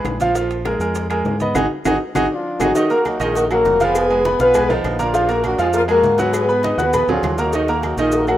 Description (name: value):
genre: latin, salsa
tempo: 201 BPM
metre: 4/4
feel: straight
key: Eb harmonic minor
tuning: A4 = 440 Hz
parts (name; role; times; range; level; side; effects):
- bright baby grand piano; accompaniment; 0.0-8.4 s; Eb3 to Gb6; -19 LUFS; right 2 dB; none
- fingered electric bass; bass; 0.0-8.4 s; F1 to Ab2; -25 LUFS; equal; none
- bongos and cowbell; percussion; 0.0-8.3 s; none; -27 LUFS; left 5 dB; none
- congas; percussion; 0.0-8.4 s; none; -30 LUFS; left 2 dB; none
- claves; percussion; 0.1-8.4 s; none; -33 LUFS; left 4 dB; none
- maracas; percussion; 0.1-8.4 s; none; -37 LUFS; right 2 dB; none
- timbales and agogo bells; percussion; 0.1-8.4 s; none; -30 LUFS; right 6 dB; none
- mellow horn section; melody; 2.3-8.4 s; Eb3 to Cb5; -18 LUFS; left 1 dB; none
room: light reverb, studio ambience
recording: rough home demo mix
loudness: -15 LUFS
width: side -12 dB against mid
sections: 0.0-2.8 A section; 2.8-8.4 B section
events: band accent 1.6-2.8; drum fill 2.0-2.8, 7.1-7.5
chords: 0.4 Bb5; 1.6 Ab5; 2.8 Ebmadd9; 3.9 Fm7b5; 5.1 Bb7; 6.3 Abm7; 7.5 Ebm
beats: 0.06 | 0.36 0.66 0.96 1.25 | 1.55 1.85 2.15 2.45 | 2.75 3.05 3.35 3.65 | 3.95 4.25 4.55 4.84 | 5.14 5.44 5.74 6.04 | 6.34 6.64 6.94 7.24 | 7.53 7.83 8.13